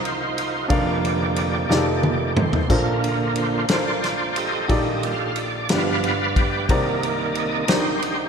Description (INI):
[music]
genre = slow gospel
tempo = 60 BPM (dotted quarters)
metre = 6/8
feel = straight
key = Bb major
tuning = A4 = 440 Hz
[part]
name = warm upright piano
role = accompaniment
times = 0.0-8.3 s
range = F1 to F5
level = -24 LUFS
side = equal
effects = slapback echo
[part]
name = overdriven tonewheel organ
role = sustained chords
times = 0.0-8.3 s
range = F2 to F5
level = -23 LUFS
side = right 2 dB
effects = slow rotary speaker, chorus vibrato
[part]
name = warm soul drum kit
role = drums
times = 0.1-8.2 s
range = kick drum, ride cymbal, snare drum, splash cymbal, toms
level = -25 LUFS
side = left 1 dB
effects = none
[sound]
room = wet concert hall reverb, RT60 2.5 s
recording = big arena sound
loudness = -19 LUFS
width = side -6 dB against mid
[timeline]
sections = 0.0-8.3 A section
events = tonewheel organ solo 0.0-8.3; drum fill 1.7-2.7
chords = 0.0 Cm11; 0.7 Bb/F; 1.7 F13; 2.7 Bbmaj9; 4.7 Ebmaj9#11/Bb; 5.7 G7; 6.7 Cm9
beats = | 0.70 1.70 | 2.70 3.70 | 4.70 5.69 | 6.69 7.69